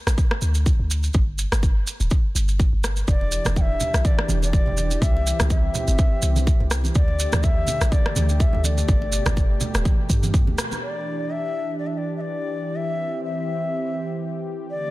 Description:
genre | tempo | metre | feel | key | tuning
afro house | 124 BPM | 4/4 | swing 55% on 16ths | E minor | A4 = 440 Hz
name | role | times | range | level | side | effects
warm 808-style bass | bass | 0.1-10.5 s | D1 to G2 | -22 LUFS | equal | tube saturation, sidechain pumping
electronic rim click | drums | 0.1-10.7 s | none | -28 LUFS | equal | soft clipping on snare
maracas | percussion | 0.1-10.8 s | none | -30 LUFS | right 4 dB | none
electronic kick drum | drums | 0.2-10.4 s | none | -19 LUFS | equal | none
reedy bansuri | melody | 3.1-14.9 s | D5 to G5 | -28 LUFS | left 2 dB | digital delay
warm analog pad | sustained chords | 3.1-14.9 s | B2 to G4 | -30 LUFS | equal | chorus, vintage 12-bit sampler grit, sidechain pumping
congas | percussion | 3.2-10.8 s | none | -30 LUFS | right 3 dB | none
room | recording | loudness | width
small room ambience | dense, heavily limited modern master | -19 LUFS | side -18 dB against mid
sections
0.0-10.8 A section; 10.8-14.9 B section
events
band accent 10.6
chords
0.0 D5; 1.1 G5; 3.1 Em7; 5.0 C; 7.0 Dsus4; 8.9 Gadd9; 10.8 Em7; 12.8 C

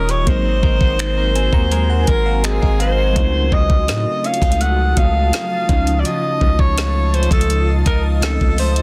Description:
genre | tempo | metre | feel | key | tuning
contemporary R&B | 83 BPM | 4/4 | straight | unclear | A4 = 440 Hz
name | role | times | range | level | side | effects
warm alto saxophone | melody | 0.0-8.8 s | Ab4 to Gb5 | -23 LUFS | equal | digital delay
FM electric piano with tremolo | accompaniment | 0.0-8.8 s | F3 to Bb5 | -29 LUFS | equal | phaser
granular cloud pad | sustained chords | 0.0-8.8 s | F4 to Eb6 | -31 LUFS | equal | built-in reverb
direct-recorded clean electric guitar | arpeggios | 0.0-8.8 s | Db3 to Bb4 | -29 LUFS | equal | spring reverb
long sustained 808-style bass | bass | 0.0-8.8 s | Eb1 to A2 | -20 LUFS | equal | none
smooth R&B drum kit | drums | 0.1-8.8 s | finger snaps, hi-hat, kick drum, snare drum | -20 LUFS | equal | soft clipping on snare
room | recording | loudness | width
digital ambience | dense, heavily limited modern master | -16 LUFS | mono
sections
0.0-3.2 A section; 3.2-8.8 B section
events
FM electric piano fill 1.0-3.2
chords
0.3 Ab9; 3.2 F7b9/Db; 5.7 F7b13/Db

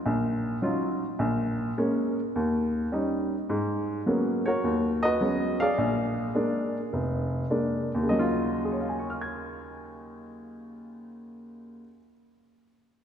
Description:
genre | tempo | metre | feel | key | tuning
solo jazz | 105 BPM | 4/4 | swing 69% on 8ths | Eb minor | A4 = 439 Hz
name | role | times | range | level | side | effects
warm upright piano | solo | 0.1-12.1 s | F1 to Ab6 | -26 LUFS | equal | none
room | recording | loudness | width
wet church reverb, RT60 2.9 s | recorded in a church or concert hall | -25 LUFS | side -8 dB against mid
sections
0.0-3.5 A section; 3.5-8.1 B section; 8.1-10.4 C section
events
none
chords
0.0 Ebm9; 1.2 Bbm7; 2.3 Eb7; 3.5 Abm11; 5.8 Bb7; 8.1 Ebm9

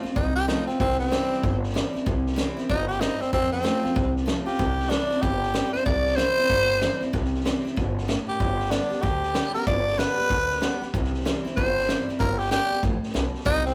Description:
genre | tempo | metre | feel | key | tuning
rockabilly | 190 BPM | 4/4 | swing 62% on 8ths | C major | A4 = 440 Hz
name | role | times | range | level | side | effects
picked steel-string acoustic guitar | accompaniment | 0.0-13.7 s | F2 to G4 | -32 LUFS | equal | none
upright bass | bass | 0.0-13.7 s | G1 to F2 | -32 LUFS | equal | none
vintage drum kit | drums | 0.0-13.7 s | hi-hat, kick drum, snare drum | -30 LUFS | equal | none
growling tenor saxophone | melody | 0.2-13.7 s | C4 to D5 | -27 LUFS | equal | none
room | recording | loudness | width
light reverb | rough rehearsal-room recording, warm saturation | -24 LUFS | mono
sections
0.0-13.5 A section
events
none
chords
0.0 F; 0.8 C; 3.3 F; 4.6 C; 8.4 G; 10.9 C; 12.2 G

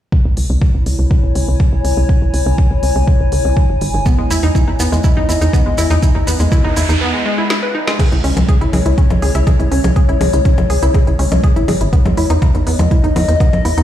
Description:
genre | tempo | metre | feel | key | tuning
melodic techno | 122 BPM | 4/4 | straight | unclear | A4 = 440 Hz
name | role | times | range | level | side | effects
electronic kick drum | drums | 0.1-13.5 s | none | -13 LUFS | equal | small room ambience
warbly tape-like pad | texture | 0.1-13.8 s | E4 to G#5 | -22 LUFS | left 4 dB | chorus, built-in reverb, sidechain pumping
tight sequencer bass | bass | 0.3-13.8 s | G#1 to E2 | -15 LUFS | equal | sidechain pumping
deep house drum kit | drums | 0.4-13.8 s | congas, crash cymbal, hi-hat, snare drum | -23 LUFS | left 2 dB | small room ambience
analog pluck | arpeggios | 4.1-13.8 s | G#3 to B4 | -19 LUFS | right 1 dB | chorus, sidechain pumping, digital delay
maracas | percussion | 4.1-7.0 s | none | -26 LUFS | right 4 dB | none
noise sweep | sound effects | 6.2-8.0 s | none | -24 LUFS | right 2 dB | none
room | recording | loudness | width
little or no reverb | played on a big sound system in a bare room, stone room reverb | -11 LUFS | side -11 dB against mid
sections
0.1-8.0 A section; 8.0-13.8 B section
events
filter sweep on analog synth bass 0.1-8.0; noise sweep 6.2-8.0; break 7.0-8.0; drum fill 7.5-8.0; filter sweep on synth pluck 8.0-13.8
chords
0.1 C#m; 4.1 Emaj7; 8.0 C#m; 11.9 Emaj7(no3)

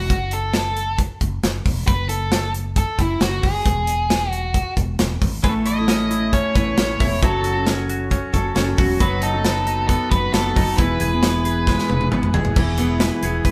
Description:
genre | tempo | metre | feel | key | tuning
jangly indie pop | 135 BPM | 4/4 | straight | unclear | A4 = 441 Hz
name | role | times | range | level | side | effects
octave-fuzz lead guitar | melody | 0.0-12.1 s | E4 to D#5 | -26 LUFS | equal | distortion
mellow fretless electric bass | bass | 0.0-13.5 s | E1 to A1 | -27 LUFS | equal | none
modern studio drum kit | drums | 0.1-13.5 s | crash cymbal, hi-hat, kick drum, snare drum, toms | -23 LUFS | equal | none
picked steel-string acoustic guitar | accompaniment | 5.4-13.5 s | E3 to C#5 | -28 LUFS | equal | none
twelve-string electric guitar | arpeggios | 5.4-13.5 s | E3 to B4 | -26 LUFS | equal | none
room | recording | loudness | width
moderate stone room reverb, RT60 1.1 s | band playing live in one room | -20 LUFS | mono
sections
0.0-12.6 A section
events
drum fill 11.7-12.6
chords
0.1 F#m; 3.7 E; 5.4 Aadd9; 7.2 F#m; 9.0 B/F#; 10.8 E

